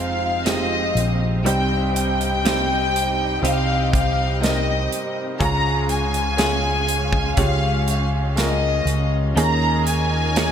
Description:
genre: pop ballad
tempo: 61 BPM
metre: 4/4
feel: straight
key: unclear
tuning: A4 = 441 Hz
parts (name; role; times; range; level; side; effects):
- warm studio violin section; melody; 0.0-10.5 s; Eb5 to Bb5; -23 LUFS; left 2 dB; none
- bright upright piano; accompaniment; 0.0-10.5 s; G2 to Bb4; -25 LUFS; right 2 dB; none
- warm studio string section; sustained chords; 0.0-10.5 s; Ab3 to Bb5; -31 LUFS; right 1 dB; none
- twelve-string electric guitar; arpeggios; 0.0-10.5 s; F2 to Ab4; -30 LUFS; left 1 dB; analog chorus, ping-pong delay
- mellow fretless electric bass; bass; 0.0-10.5 s; F1 to Eb2; -22 LUFS; equal; lush chorus
- modern studio drum kit; drums; 0.5-10.5 s; hi-hat, kick drum, snare drum; -25 LUFS; right 1 dB; gated reverb
room: light reverb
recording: bright 1980s-style digital production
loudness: -18 LUFS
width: side -8 dB against mid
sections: 0.0-10.5 A section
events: none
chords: 0.0 Fm7; 1.4 Cm; 5.4 Db; 9.4 Eb7sus4

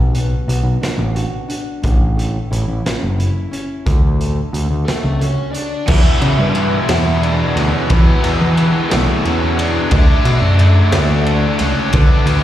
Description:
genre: quiet-loud alternative rock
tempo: 59 BPM (dotted quarters)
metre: 6/8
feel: straight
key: unclear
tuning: A4 = 440 Hz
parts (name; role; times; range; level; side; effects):
- fingerpicked steel-string acoustic guitar; arpeggios; 0.0-5.9 s; A2 to F#4; -26 LUFS; equal; slapback echo, digital delay
- growling picked electric bass; bass; 0.0-12.4 s; F#1 to E3; -15 LUFS; equal; overdrive
- raw garage drum kit; drums; 0.1-12.4 s; crash cymbal, hi-hat, kick drum, ride cymbal, snare drum; -17 LUFS; equal; none
- bluesy overdriven lead guitar; melody; 4.9-12.4 s; A3 to E5; -23 LUFS; left 1 dB; distortion, slapback echo, digital delay
- string machine, full ensemble; sustained chords; 5.9-12.4 s; D3 to G5; -30 LUFS; left 1 dB; none
- distorted electric guitar; riff; 5.9-12.4 s; E2 to D4; -22 LUFS; equal; distortion
- tight distorted guitar; riff; 5.9-12.4 s; E2 to D4; -23 LUFS; left 12 dB; distortion, slapback echo
- tight distorted guitar; riff; 5.9-12.4 s; E2 to D4; -24 LUFS; right 12 dB; distortion
room: little or no reverb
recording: live gig heard through the venue's PA, recital hall reverb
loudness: -13 LUFS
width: side -12 dB against mid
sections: 0.0-5.9 A section; 5.9-12.4 B section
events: none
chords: 0.0 Bm; 1.8 A; 3.9 D; 5.9 Em7; 9.9 Dadd9

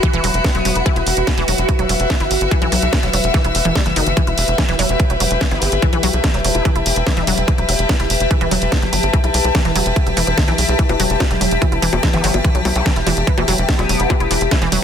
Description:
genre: psychedelic trance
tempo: 145 BPM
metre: 4/4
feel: straight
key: E minor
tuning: A4 = 444 Hz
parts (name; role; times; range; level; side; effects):
- evolving wavetable pad; sustained chords; 0.0-14.8 s; F#4 to G4; -23 LUFS; equal; ensemble chorus, built-in reverb, phaser, sidechain pumping
- wide unison pluck; riff; 0.0-14.7 s; D#3 to E4; -22 LUFS; moving between left 5 dB and right 5 dB; auto-pan, sidechain pumping, dub echo
- electronic kick drum; drums; 0.0-14.6 s; none; -17 LUFS; equal; studio reverb
- garage drum kit; drums; 0.0-14.8 s; bongos, hi-hat, snare drum; -22 LUFS; equal; studio reverb
- warm chamber string section; texture; 0.0-14.8 s; B4 to E6; -23 LUFS; left 3 dB; sidechain pumping
- tight sequencer bass; bass; 0.1-14.8 s; E1 to B1; -20 LUFS; equal; none
- vowel-sweep wobble bass; second line; 0.4-1.0, 5.5-7.4, 12.1-14.3 s; B3 to E4; -30 LUFS; left 2 dB; none
room: light reverb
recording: dense, heavily limited modern master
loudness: -14 LUFS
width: side -8 dB against mid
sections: 0.0-14.8 A section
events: none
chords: 0.0 E5

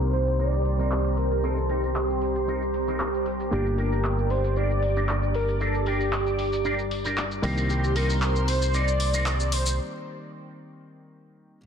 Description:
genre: nu-disco, nu disco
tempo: 115 BPM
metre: 4/4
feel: swing 53% on 16ths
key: unclear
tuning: A4 = 440 Hz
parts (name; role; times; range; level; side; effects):
- wide unison lead; melody; 0.0-9.8 s; G4 to D5; -30 LUFS; right 1 dB; analog chorus, ping-pong delay
- warm electric grand piano; accompaniment; 0.0-11.6 s; Eb3 to G4; -35 LUFS; left 1 dB; low-pass filter
- string machine, full ensemble; sustained chords; 0.0-9.8 s; G4 to D6; -30 LUFS; equal; ensemble chorus
- electric guitar with an envelope filter; riff; 0.0-9.6 s; C4 to Bb4; -33 LUFS; right 1 dB; ensemble chorus, low-pass filter
- picked electric bass; bass; 0.0-9.8 s; G1 to C2; -26 LUFS; equal; tube saturation
- pop drum kit; drums; 0.0-9.8 s; handclaps, hi-hat, shaker; -33 LUFS; equal; overdrive
- tambourine; percussion; 3.5-9.8 s; none; -42 LUFS; left 8 dB; none
room: light reverb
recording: dense, heavily limited modern master, low-pass filter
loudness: -23 LUFS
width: side -7 dB against mid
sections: 0.0-11.7 A section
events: filter sweep on clean electric guitar 0.0-11.7; filter sweep on electric grand piano 0.0-11.7; filter sweep on string machine 0.0-11.7; filter sweep 0.0-11.7; break 9.8-11.7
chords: 0.0 Cm7; 3.5 Gm; 7.4 Cm7

